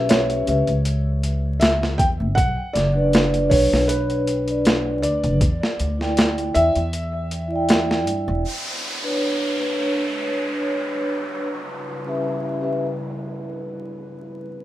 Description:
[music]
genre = trip hop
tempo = 79 BPM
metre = 4/4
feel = swing 54% on 16ths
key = B minor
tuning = A4 = 440 Hz
[part]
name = felt-muted upright piano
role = melody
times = 0.0-8.0 s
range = B4 to G5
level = -24 LUFS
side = equal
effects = vintage 12-bit sampler grit, dub echo
[part]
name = vibraphone with soft mallets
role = accompaniment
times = 0.0-12.8 s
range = C#4 to G5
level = -23 LUFS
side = equal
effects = tremolo, tape echo
[part]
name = upright bass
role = bass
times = 0.0-8.4 s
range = E1 to G2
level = -23 LUFS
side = equal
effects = none
[part]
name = boom bap sampler-style drum kit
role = drums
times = 0.1-8.3 s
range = hi-hat, kick drum, snare drum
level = -21 LUFS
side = equal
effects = overdrive
[part]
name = dark analog pad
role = sustained chords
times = 8.4-14.6 s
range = C#3 to C#5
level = -31 LUFS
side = right 1 dB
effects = chorus, vintage 12-bit sampler grit
[part]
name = downlifter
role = sound effects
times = 8.4-14.5 s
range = none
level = -30 LUFS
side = equal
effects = none
[sound]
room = moderate small room reverb, RT60 0.5 s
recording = rough home demo mix, vinyl crackle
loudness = -19 LUFS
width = side -14 dB against mid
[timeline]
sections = 0.0-8.4 A section; 8.4-14.6 B section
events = break 6.9-8.4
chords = 0.0 C#m7b5; 2.4 Bmadd9; 5.4 Em7; 8.4 Bmadd9; 11.5 C#m7b5

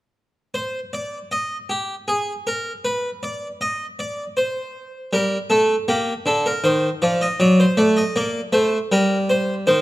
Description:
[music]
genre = classical, baroque-style two-part invention for harpsichord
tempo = 79 BPM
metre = 3/4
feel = straight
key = unclear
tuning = A4 = 437 Hz
[part]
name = harpsichord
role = solo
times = 0.5-9.8 s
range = D3 to Eb5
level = -18 LUFS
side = equal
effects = none
[sound]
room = moderate recital hall reverb, RT60 1.8 s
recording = close, detailed microphones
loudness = -18 LUFS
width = side -17 dB against mid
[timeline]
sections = 0.5-9.8 A section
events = none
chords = 0.5 N.C.; 5.1 Gm; 6.6 Cm/Eb; 7.4 D/F#; 8.9 Gm

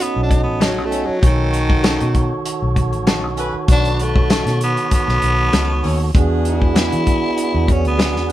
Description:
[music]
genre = straight-eighth soul blues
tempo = 98 BPM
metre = 4/4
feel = straight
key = B mixolydian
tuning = A4 = 437 Hz
[part]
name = growling tenor saxophone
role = melody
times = 0.0-8.3 s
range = D#3 to E4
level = -21 LUFS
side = left 1 dB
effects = none
[part]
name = mellow tonewheel organ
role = accompaniment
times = 0.0-8.3 s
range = D#3 to C#5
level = -22 LUFS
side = right 4 dB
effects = slow rotary speaker, overdrive
[part]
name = warm soul drum kit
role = drums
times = 0.0-8.3 s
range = hi-hat, kick drum, snare drum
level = -17 LUFS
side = equal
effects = none
[part]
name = vintage muted fingered electric bass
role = bass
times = 0.2-8.3 s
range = A1 to E3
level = -20 LUFS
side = equal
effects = none
[part]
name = direct-recorded clean electric guitar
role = stabs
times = 0.6-8.2 s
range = F#3 to A4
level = -24 LUFS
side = left 4 dB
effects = none
[part]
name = warm horn section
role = sustained chords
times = 0.9-8.3 s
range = C#4 to C#5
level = -27 LUFS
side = left 1 dB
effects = none
[sound]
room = moderate studio reverb, RT60 0.8 s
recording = band playing live in one room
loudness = -14 LUFS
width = side -14 dB against mid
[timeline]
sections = 0.0-8.3 A section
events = tenor saxophone solo 0.0-8.3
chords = 0.0 B9; 6.1 E9

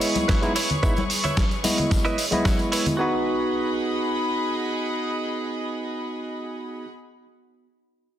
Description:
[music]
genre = nu-disco, nu disco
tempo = 111 BPM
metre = 4/4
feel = straight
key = G# minor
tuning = A4 = 440 Hz
[part]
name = barky tine electric piano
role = accompaniment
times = 0.0-6.9 s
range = G#3 to D#5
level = -26 LUFS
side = right 1 dB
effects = vintage 12-bit sampler grit, low-pass filter, analog delay
[part]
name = warm studio string section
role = sustained chords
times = 0.0-6.9 s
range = G#4 to C#6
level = -30 LUFS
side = left 2 dB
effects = sidechain pumping
[part]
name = direct-recorded clean electric guitar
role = riff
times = 0.0-6.9 s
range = E4 to D#5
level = -31 LUFS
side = right 3 dB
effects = analog chorus, low-pass filter, analog delay
[part]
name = dusty soul sampler-style drum kit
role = drums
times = 0.0-3.0 s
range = hi-hat, snare drum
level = -27 LUFS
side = right 2 dB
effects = none
[part]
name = tambourine and congas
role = percussion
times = 0.0-3.0 s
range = none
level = -28 LUFS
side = left 2 dB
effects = none
[part]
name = electronic kick drum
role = drums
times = 0.3-2.6 s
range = none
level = -23 LUFS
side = equal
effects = none
[sound]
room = moderate plate reverb, RT60 1.8 s, digital ambience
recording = dense, heavily limited modern master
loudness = -22 LUFS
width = side -11 dB against mid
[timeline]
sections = 0.0-3.0 A section; 3.0-7.3 B section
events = none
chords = 0.0 C#m7; 3.0 G#m7

